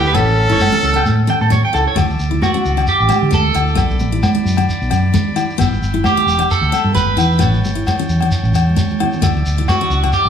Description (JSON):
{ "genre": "highlife guitar band", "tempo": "132 BPM", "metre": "4/4", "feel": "swing 55% on 16ths", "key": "D major", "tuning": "A4 = 441 Hz", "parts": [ { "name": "clear trumpet", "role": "melody", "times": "0.0-1.5 s", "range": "G4 to A4", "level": "-17 LUFS", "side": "right 1 dB", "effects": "none" }, { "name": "raspy tenor saxophone", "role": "second line", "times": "0.0-1.5 s", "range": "B3 to C#4", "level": "-26 LUFS", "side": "left 4 dB", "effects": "none" }, { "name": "picked steel-string acoustic guitar", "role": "accompaniment", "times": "0.0-10.2 s", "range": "A3 to E4", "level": "-23 LUFS", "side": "left 4 dB", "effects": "none" }, { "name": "electric guitar at the edge of break-up", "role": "arpeggios", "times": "0.0-10.3 s", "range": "F#4 to G5", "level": "-18 LUFS", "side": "right 3 dB", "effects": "phaser" }, { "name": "hollow-body short-scale fingered electric bass", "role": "bass", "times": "0.0-10.3 s", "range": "E1 to D3", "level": "-17 LUFS", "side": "equal", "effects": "none" }, { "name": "shekere", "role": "percussion", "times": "0.0-10.3 s", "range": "none", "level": "-22 LUFS", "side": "equal", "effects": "none" }, { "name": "agogo bells", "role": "percussion", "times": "0.2-10.1 s", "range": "none", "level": "-23 LUFS", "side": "left 7 dB", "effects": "none" }, { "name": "congas", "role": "percussion", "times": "0.2-10.2 s", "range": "none", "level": "-23 LUFS", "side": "right 3 dB", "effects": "none" }, { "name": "combo organ", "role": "sustained chords", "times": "1.9-10.3 s", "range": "C#5 to D6", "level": "-28 LUFS", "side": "left 1 dB", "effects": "spring reverb" } ], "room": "wet large studio reverb, RT60 1.2 s", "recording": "band playing live in one room, lossy compression artefacts", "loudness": "-13 LUFS", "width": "side -8 dB against mid", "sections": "0.0-2.0 A section; 2.0-10.3 B section", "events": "clean electric guitar solo 2.0-10.3; drum fill 8.7-9.2", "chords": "0.1 A7; 2.0 Dsus2; 3.8 Bm7; 5.6 G6; 7.4 A7; 9.2 Dsus2" }